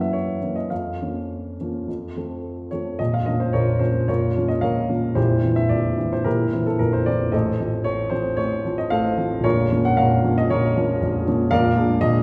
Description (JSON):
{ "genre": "classical, romantic character piece for solo piano", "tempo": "99-120 BPM", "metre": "4/4", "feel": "rubato", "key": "Bb minor", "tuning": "A4 = 442 Hz", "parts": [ { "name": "warm grand piano", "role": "solo", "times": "0.0-12.2 s", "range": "Bb0 to Gb5", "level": "-22 LUFS", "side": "equal", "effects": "none" } ], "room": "wet recital hall reverb, RT60 1.4 s", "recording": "recorded in a church or concert hall", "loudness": "-22 LUFS", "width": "mono", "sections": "0.0-3.0 A section; 3.0-12.2 B section", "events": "none", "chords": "0.0 Gb7; 0.7 Bbm/F; 1.9 F; 3.0 Bbm; 5.2 C7/Bb; 7.3 F7/A; 9.4 Bbm; 11.5 Bb7", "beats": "0.13 | 0.70 1.30 1.88 2.43 | 2.99 3.54 4.08 4.63 | 5.17 5.70 6.25 6.79 | 7.33 7.86 8.39 8.92 | 9.45 9.97 10.49 11.00 | 11.51 12.01" }